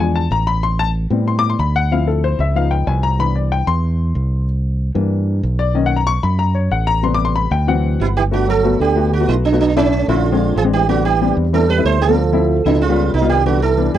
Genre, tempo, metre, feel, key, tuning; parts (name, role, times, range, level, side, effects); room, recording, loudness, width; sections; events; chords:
jazz; 187 BPM; 4/4; straight; G major; A4 = 441 Hz
warm baby grand piano; accompaniment; 0.0-14.0 s; C3 to D6; -19 LUFS; left 7 dB
fingered electric bass; bass; 0.0-14.0 s; G1 to A2; -17 LUFS; right 1 dB
sitar; melody; 8.0-14.0 s; C#4 to C5; -18 LUFS; right 6 dB
warm trombone; second line; 8.0-14.0 s; A2 to A3; -22 LUFS; right 9 dB
little or no reverb; dry, close 1970s-style studio recording; -14 LUFS; side -11 dB against mid
0.0-8.3 A section; 8.3-14.0 B section
grand piano solo 0.0-8.3
0.0 E7b9; 0.6 Am9; 1.9 Dm9; 2.6 C#9; 3.2 Cmaj9; 4.5 C9; 5.8 Bmaj9; 7.0 Am9; 7.7 D7; 8.3 Gmaj9; 9.6 Bm11; 10.2 Bb9; 10.9 Am11; 12.2 Dm7; 12.8 C#7#11; 13.5 Cmaj9